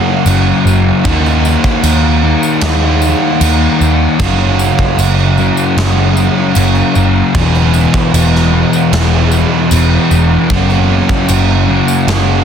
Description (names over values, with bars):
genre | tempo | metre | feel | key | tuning
rock, shoegaze and dream pop | 76 BPM | 4/4 | straight | unclear | A4 = 440 Hz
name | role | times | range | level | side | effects
crunchy overdriven guitar | riff | 0.0-12.4 s | E2 to G#4 | -15 LUFS | right 10 dB | reverse reverb
thick fuzz guitar | riff | 0.0-12.4 s | E2 to D#4 | -14 LUFS | left 9 dB | distortion, lush chorus
vintage muted picked electric bass | bass | 0.3-12.4 s | E1 to D#2 | -13 LUFS | equal | none
big rock drum kit | drums | 0.3-12.3 s | crash cymbal, kick drum, snare drum | -16 LUFS | right 2 dB | soft clipping on kick, soft clipping on snare
tambourine | percussion | 0.3-12.2 s | none | -26 LUFS | left 8 dB | none
room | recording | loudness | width
light reverb | dense, heavily limited modern master | -9 LUFS | side -8 dB against mid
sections
0.0-12.4 A section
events
none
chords
0.0 F#; 1.0 D#m; 4.2 F#; 7.3 E; 10.5 F#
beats
0.26 | 1.05 1.84 2.62 3.41 | 4.20 4.99 5.77 6.56 | 7.35 8.13 8.92 9.71 | 10.50 11.29 12.07